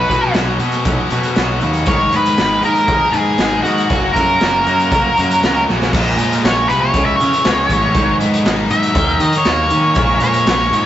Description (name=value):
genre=indie rock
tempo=119 BPM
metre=4/4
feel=straight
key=unclear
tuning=A4 = 440 Hz
part: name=octave-fuzz lead guitar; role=melody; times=0.0-10.9 s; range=F#4 to E5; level=-15 LUFS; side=equal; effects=distortion, slapback echo
part: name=biting overdriven guitar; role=riff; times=0.0-10.9 s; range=F#2 to G#4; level=-20 LUFS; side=left 4 dB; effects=none
part: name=twangy electric guitar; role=riff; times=0.0-10.9 s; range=F#2 to A#4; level=-23 LUFS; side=right 3 dB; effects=none
part: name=fuzz picked electric bass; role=bass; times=0.0-10.9 s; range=F#1 to D#3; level=-20 LUFS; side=equal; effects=overdrive
part: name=raw garage drum kit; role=drums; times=0.1-10.8 s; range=crash cymbal, hi-hat, kick drum, snare drum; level=-19 LUFS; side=equal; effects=none
room=moderate stone room reverb, RT60 1.1 s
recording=rough rehearsal-room recording, nothing above 7.9 kHz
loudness=-12 LUFS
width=side -12 dB against mid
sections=0.0-5.9 A section; 5.9-10.9 B section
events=drum fill 5.7; lead electric guitar solo 5.9-10.9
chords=0.0 Bsus2; 1.9 G#madd9; 3.9 F#; 5.9 A#m7; 6.9 C#m7; 7.9 G#m7; 9.0 D#m7; 10.0 A#m7